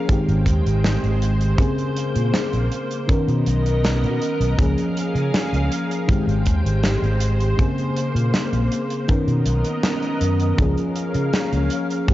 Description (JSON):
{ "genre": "vaporwave", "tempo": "80 BPM", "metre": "4/4", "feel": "straight", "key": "Db lydian", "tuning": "A4 = 441 Hz", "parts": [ { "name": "mellow FM electric piano", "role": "accompaniment", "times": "0.0-12.1 s", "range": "Db3 to Bb4", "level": "-23 LUFS", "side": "left 1 dB", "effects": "lush chorus, tape echo" }, { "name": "soft string machine", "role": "sustained chords", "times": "0.0-12.1 s", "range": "Ab3 to G5", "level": "-28 LUFS", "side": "right 1 dB", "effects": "ensemble chorus" }, { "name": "fingered electric bass", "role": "bass", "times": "0.1-12.1 s", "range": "Ab1 to Db3", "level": "-20 LUFS", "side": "equal", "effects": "none" }, { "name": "kick drum", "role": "drums", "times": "0.1-12.1 s", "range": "none", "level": "-20 LUFS", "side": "equal", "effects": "none" }, { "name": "modern studio drum kit", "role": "drums", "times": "0.1-12.1 s", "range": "hi-hat, snare drum", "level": "-26 LUFS", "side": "right 1 dB", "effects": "gated reverb" } ], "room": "light reverb, studio reverb", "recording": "cassette tape, nothing above 7.6 kHz", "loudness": "-18 LUFS", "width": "side -15 dB against mid", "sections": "0.0-12.1 A section", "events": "none", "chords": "0.1 Abmaj7; 1.6 Bbm9; 3.1 Cbmaj9; 4.6 Db6; 6.1 Abmaj7; 7.6 Bbm9; 9.1 Cbmaj9; 10.6 Db6", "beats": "0.09 0.84 | 1.59 2.34 3.09 3.84 | 4.59 5.34 6.09 6.84 | 7.59 8.34 9.09 9.84 | 10.59 11.34 12.09" }